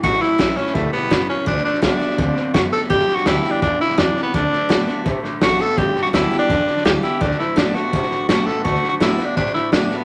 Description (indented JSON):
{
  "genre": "rockabilly",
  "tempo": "167 BPM",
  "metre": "4/4",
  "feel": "straight",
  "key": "D mixolydian",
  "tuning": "A4 = 440 Hz",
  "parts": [
    { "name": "raspy tenor saxophone", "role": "melody", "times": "0.0-10.0 s", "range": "A3 to A4", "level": "-22 LUFS", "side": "equal", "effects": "none" },
    { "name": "picked steel-string acoustic guitar", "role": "accompaniment", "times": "0.0-10.0 s", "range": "G2 to G4", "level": "-29 LUFS", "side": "equal", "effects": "none" },
    { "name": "electric guitar through a small old amp", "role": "riff", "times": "0.0-10.0 s", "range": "G2 to C4", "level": "-28 LUFS", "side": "equal", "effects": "none" },
    { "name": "upright bass", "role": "bass", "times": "0.0-9.9 s", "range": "F#1 to C3", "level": "-29 LUFS", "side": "equal", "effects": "none" },
    { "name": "vintage drum kit", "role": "drums", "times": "0.0-10.0 s", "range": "hi-hat, kick drum, snare drum", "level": "-23 LUFS", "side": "equal", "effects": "none" }
  ],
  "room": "moderate large studio reverb, RT60 1.0 s",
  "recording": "none",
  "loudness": "-18 LUFS",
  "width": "mono",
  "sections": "0.0-2.9 A section; 2.9-10.0 B section",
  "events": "none",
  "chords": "0.0 A7; 1.5 D; 2.9 G; 4.3 D; 5.8 G; 7.2 D"
}